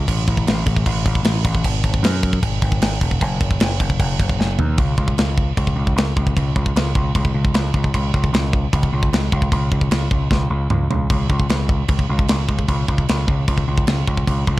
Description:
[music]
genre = heavy metal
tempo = 152 BPM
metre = 4/4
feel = straight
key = unclear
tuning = A4 = 438 Hz
[part]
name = growling picked electric bass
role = bass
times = 0.0-14.6 s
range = E1 to F#2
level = -19 LUFS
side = equal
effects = overdrive
[part]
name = tight metal drum kit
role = drums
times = 0.1-14.6 s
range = crash cymbal, kick drum, snare drum, toms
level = -19 LUFS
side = equal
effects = none
[sound]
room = little or no reverb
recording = dark, warm production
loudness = -16 LUFS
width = side -17 dB against mid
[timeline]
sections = 0.0-4.8 A section; 4.8-14.6 B section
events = drum fill 4.4-4.8, 10.3-11.1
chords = none

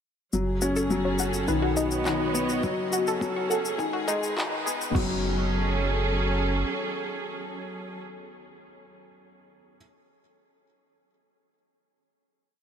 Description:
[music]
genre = piano and strings electronica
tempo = 104 BPM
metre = 4/4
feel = straight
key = F# dorian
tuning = A4 = 442 Hz
[part]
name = dark studio string section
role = sustained chords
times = 0.3-8.0 s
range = F#3 to D#5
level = -31 LUFS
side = right 2 dB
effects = none
[part]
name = dark baby grand piano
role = riff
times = 0.3-9.8 s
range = D#3 to A4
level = -28 LUFS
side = left 2 dB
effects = digital delay
[part]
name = warm sub bass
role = bass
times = 0.3-6.6 s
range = F#1 to B1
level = -31 LUFS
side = right 1 dB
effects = sidechain pumping
[part]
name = deep house drum kit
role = drums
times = 0.3-5.1 s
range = crash cymbal, handclaps, shaker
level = -34 LUFS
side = left 2 dB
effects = none
[part]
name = analog pluck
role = arpeggios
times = 0.6-5.2 s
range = D#4 to F#5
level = -32 LUFS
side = left 2 dB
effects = chorus, phaser, sidechain pumping, digital delay
[part]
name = electronic kick drum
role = drums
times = 2.6-5.1 s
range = none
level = -30 LUFS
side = right 1 dB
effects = none
[sound]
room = light reverb, digital ambience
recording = high-pass filter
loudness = -24 LUFS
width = side -8 dB against mid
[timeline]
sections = 0.3-4.9 build; 4.9-7.3 final chord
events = build-up 0.3-4.9; filter sweep 0.3-4.9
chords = 0.3 F#m; 1.5 B; 2.6 F#m; 3.8 G#m; 4.9 F#m

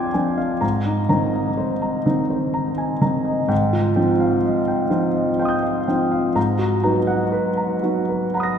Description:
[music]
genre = classical, impressionist solo piano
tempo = 62 BPM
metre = 3/4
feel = rubato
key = F dorian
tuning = A4 = 439 Hz
[part]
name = warm concert grand piano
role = solo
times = 0.0-8.6 s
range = Ab2 to A#6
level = -18 LUFS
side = equal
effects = none
[sound]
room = wet cathedral reverb, RT60 5.2 s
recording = recorded in a church or concert hall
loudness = -18 LUFS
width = side -8 dB against mid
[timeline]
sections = 0.0-8.6 A section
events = none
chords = 0.0 Fm6; 0.6 Abadd9; 3.5 Fm9/Ab; 6.4 G#m9

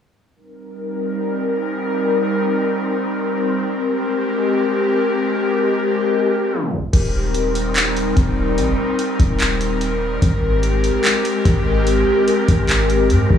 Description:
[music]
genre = hip hop, atmospheric cloud-rap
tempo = 146 BPM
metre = 4/4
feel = half-time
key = Eb major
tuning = A4 = 440 Hz
[part]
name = airy breathy pad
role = sustained chords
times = 0.7-13.4 s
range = G3 to Bb4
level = -18 LUFS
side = left 1 dB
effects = chorus, sidechain pumping
[part]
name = clean 808-style bass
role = bass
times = 6.9-13.4 s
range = Eb1 to Ab2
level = -19 LUFS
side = equal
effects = none
[part]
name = booming analog drum machine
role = drums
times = 6.9-13.4 s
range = crash cymbal, handclaps, hi-hat, kick drum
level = -20 LUFS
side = equal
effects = none
[sound]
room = light reverb, digital ambience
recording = tape stop, studio reverb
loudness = -16 LUFS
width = side -8 dB against mid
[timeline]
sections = 0.4-6.9 A section; 6.9-13.4 B section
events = tape stop 6.5-6.9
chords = 0.4 Eb6; 3.6 Abmaj9; 6.9 Eb6; 10.2 Abmaj9

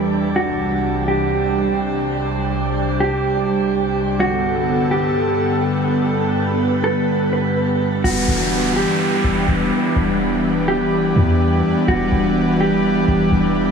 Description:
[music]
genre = hip hop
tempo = 125 BPM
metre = 4/4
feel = half-time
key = E minor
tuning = A4 = 441 Hz
[part]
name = airy breathy pad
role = sustained chords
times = 0.0-13.7 s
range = C2 to B4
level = -18 LUFS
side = equal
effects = chorus, low-pass filter
[part]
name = drifting glass-harmonics texture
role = texture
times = 0.0-13.7 s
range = G3 to D5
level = -27 LUFS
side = right 3 dB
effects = chorus, built-in reverb
[part]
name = mellow electric guitar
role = melody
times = 0.4-13.3 s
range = F#4 to B4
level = -22 LUFS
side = right 2 dB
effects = low-pass filter, tape echo
[part]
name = clean 808-style bass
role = bass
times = 8.0-13.7 s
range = E1 to E2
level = -21 LUFS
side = equal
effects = none
[part]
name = downlifter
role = sound effects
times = 8.0-11.9 s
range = none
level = -26 LUFS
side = equal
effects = none
[sound]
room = moderate shimmer reverb, RT60 8.1 s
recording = none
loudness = -16 LUFS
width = side -6 dB against mid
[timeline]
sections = 0.0-8.0 A section; 8.0-13.7 B section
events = none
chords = 0.4 Csus2; 4.2 Gadd9; 8.0 Em7

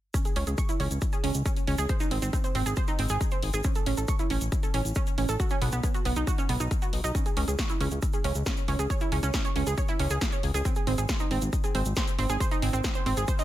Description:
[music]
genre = uplifting trance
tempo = 137 BPM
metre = 4/4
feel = straight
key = C# harmonic minor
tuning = A4 = 439 Hz
[part]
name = analog pluck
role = arpeggios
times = 0.1-13.4 s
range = B3 to C#6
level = -31 LUFS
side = right 4 dB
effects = chorus, sidechain pumping, ping-pong delay
[part]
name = big-room dance drum kit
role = drums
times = 0.1-13.4 s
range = hi-hat, snare drum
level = -36 LUFS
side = equal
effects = none
[part]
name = electronic kick drum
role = drums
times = 0.1-13.4 s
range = none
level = -28 LUFS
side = left 1 dB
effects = none
[part]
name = egg shaker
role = percussion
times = 0.1-13.4 s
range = none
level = -41 LUFS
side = right 2 dB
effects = none
[part]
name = fat analog bass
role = bass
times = 0.4-13.2 s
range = G#1 to C#2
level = -28 LUFS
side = left 1 dB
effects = tube saturation, sidechain pumping
[part]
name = swell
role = sound effects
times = 13.4 s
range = none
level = -37 LUFS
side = left 2 dB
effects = none
[sound]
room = little or no reverb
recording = none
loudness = -25 LUFS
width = side -14 dB against mid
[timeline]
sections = 0.1-13.4 A section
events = swell 13.4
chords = 0.1 C#5; 1.9 G#; 3.6 A; 5.4 B; 7.1 C#5; 10.7 G#

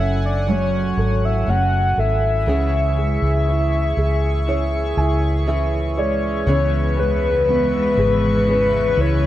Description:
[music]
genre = pop ballad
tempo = 60 BPM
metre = 4/4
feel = straight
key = unclear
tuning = A4 = 441 Hz
[part]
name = soft octave-layered synth lead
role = melody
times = 0.0-9.3 s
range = B4 to F#5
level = -21 LUFS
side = left 2 dB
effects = chorus
[part]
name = felt-muted upright piano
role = accompaniment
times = 0.0-9.3 s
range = C#3 to G#5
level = -25 LUFS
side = right 3 dB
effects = none
[part]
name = chorused pulse-width pad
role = sustained chords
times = 0.0-9.3 s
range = G#4 to C#6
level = -29 LUFS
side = left 1 dB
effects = none
[part]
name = nylon-string guitar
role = arpeggios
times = 0.0-9.3 s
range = C#3 to G#4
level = -30 LUFS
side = equal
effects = none
[part]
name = vintage muted fingered electric bass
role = bass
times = 0.0-9.3 s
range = F#1 to C#2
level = -20 LUFS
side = equal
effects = none
[part]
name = clear symphonic cello section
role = second line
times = 6.5-9.3 s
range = E2 to G#3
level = -24 LUFS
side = left 2 dB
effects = none
[sound]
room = light reverb, small room ambience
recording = dark, warm production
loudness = -16 LUFS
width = side -13 dB against mid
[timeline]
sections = 0.0-6.5 A section; 6.5-9.3 B section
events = felt piano fill 4.5-6.5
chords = 0.0 F#madd9; 2.5 C#m; 6.5 C#m7

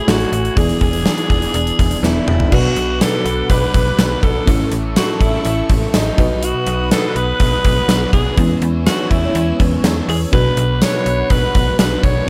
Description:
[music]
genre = 1980s-style pop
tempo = 123 BPM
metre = 4/4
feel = straight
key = unclear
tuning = A4 = 441 Hz
[part]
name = raspy alto saxophone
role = melody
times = 0.0-12.3 s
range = D#4 to C#5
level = -23 LUFS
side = equal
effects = slapback echo
[part]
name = mellow FM electric piano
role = accompaniment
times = 0.0-12.3 s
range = A2 to D5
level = -24 LUFS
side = equal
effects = chorus
[part]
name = lush unison pad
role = sustained chords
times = 0.0-12.3 s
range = E3 to E6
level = -30 LUFS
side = equal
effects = chorus, phaser
[part]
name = slap-like FM bass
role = bass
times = 0.1-12.2 s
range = E1 to E2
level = -22 LUFS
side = equal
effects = none
[part]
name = gated 80s drum kit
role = drums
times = 0.1-12.2 s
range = crash cymbal, hi-hat, kick drum, snare drum, tambourine, toms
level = -19 LUFS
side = equal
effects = gated reverb
[part]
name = tambourine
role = percussion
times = 0.1-11.9 s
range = none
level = -37 LUFS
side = equal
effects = none
[part]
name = overdriven electric guitar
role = accompaniment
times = 2.5-12.3 s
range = A2 to E4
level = -32 LUFS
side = equal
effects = none
[sound]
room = small room reverb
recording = none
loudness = -16 LUFS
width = mono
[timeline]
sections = 0.0-2.5 A section; 2.5-12.3 B section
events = drum fill 2.0-2.5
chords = 0.0 F#m7/A; 0.6 E7; 2.5 Bm; 4.5 A; 6.2 B; 8.4 E6; 10.3 Bm

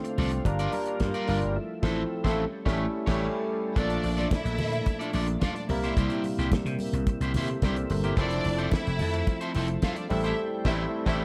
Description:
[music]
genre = disco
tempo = 109 BPM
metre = 4/4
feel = straight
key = unclear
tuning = A4 = 440 Hz
[part]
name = barky tine electric piano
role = accompaniment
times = 0.0-11.2 s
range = F3 to E5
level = -34 LUFS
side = equal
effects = overdrive, analog chorus
[part]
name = electric guitar at the edge of break-up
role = accompaniment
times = 0.0-11.2 s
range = A3 to D5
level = -38 LUFS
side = equal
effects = none
[part]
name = tonewheel organ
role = sustained chords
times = 0.0-11.2 s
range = Bb2 to Bb4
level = -39 LUFS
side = equal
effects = chorus vibrato, slow rotary speaker
[part]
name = damped 70s drum kit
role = drums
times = 0.0-11.2 s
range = crash cymbal, hi-hat, kick drum, snare drum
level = -32 LUFS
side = equal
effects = none
[part]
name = vintage slap bass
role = bass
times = 0.2-11.2 s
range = F1 to C3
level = -32 LUFS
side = equal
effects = none
[part]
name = congas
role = percussion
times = 0.2-10.2 s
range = none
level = -39 LUFS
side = equal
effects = none
[part]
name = clear studio string section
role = second line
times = 3.8-11.2 s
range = D4 to F5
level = -36 LUFS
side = equal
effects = none
[sound]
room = small room reverb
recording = none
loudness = -28 LUFS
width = mono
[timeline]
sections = 0.0-3.8 A section; 3.8-11.2 B section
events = band accent 1.6-3.8, 10.4-11.2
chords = 0.5 Gm7; 1.6 Fmaj7; 2.4 A7; 3.8 Bbmaj7; 5.7 C7; 8.2 Fmaj7; 10.1 Am7

